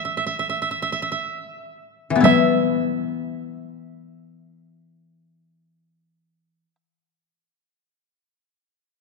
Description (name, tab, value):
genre	japanese traditional, Japanese chamber music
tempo	37 BPM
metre	4/4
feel	rubato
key	unclear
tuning	A4 = 440 Hz
part	shamisen	melody	0.0-6.8 s	E5	-24 LUFS	right 2 dB	none
part	koto	second line	0.0-6.7 s	E5	-24 LUFS	right 5 dB	none
part	koto	accompaniment	2.1-6.7 s	E3 to E4	-20 LUFS	left 7 dB	none
part	taiko ensemble	percussion	2.2-3.0 s	none	-22 LUFS	equal	none
room	moderate concert hall reverb, RT60 2.2 s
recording	dark, warm production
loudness	-19 LUFS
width	side -3 dB against mid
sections	0.0-2.2 A section; 2.2-8.8 B section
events	slowing down 0.0-2.2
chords	none